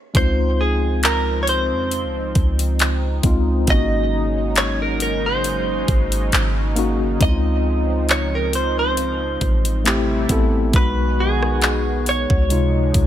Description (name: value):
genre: contemporary R&B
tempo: 68 BPM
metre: 4/4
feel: swing 54% on 16ths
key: Db major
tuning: A4 = 439 Hz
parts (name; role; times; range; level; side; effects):
- mellow tine electric piano; accompaniment; 0.1-13.1 s; C3 to A4; -24 LUFS; left 4 dB; fast stereo tremolo
- warm analog pad; sustained chords; 0.1-13.1 s; C3 to Gb4; -28 LUFS; right 1 dB; chorus, sidechain pumping
- clean 808-style bass; bass; 0.1-13.1 s; Ab1 to F2; -21 LUFS; equal; none
- trap drum kit; drums; 0.1-13.1 s; handclaps, hi-hat, kick drum, rim click; -20 LUFS; equal; none
- direct-recorded clean electric guitar; melody; 0.2-13.1 s; Ab4 to Eb5; -23 LUFS; right 1 dB; lush chorus, tape echo
room: digital ambience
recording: none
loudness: -16 LUFS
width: side -11 dB against mid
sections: 0.1-13.1 A section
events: none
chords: 0.1 Dbmaj9; 3.7 Ab7sus4; 7.2 Dbmaj9; 9.9 Am7; 10.7 Abm7/Cb; 12.5 Dbmaj9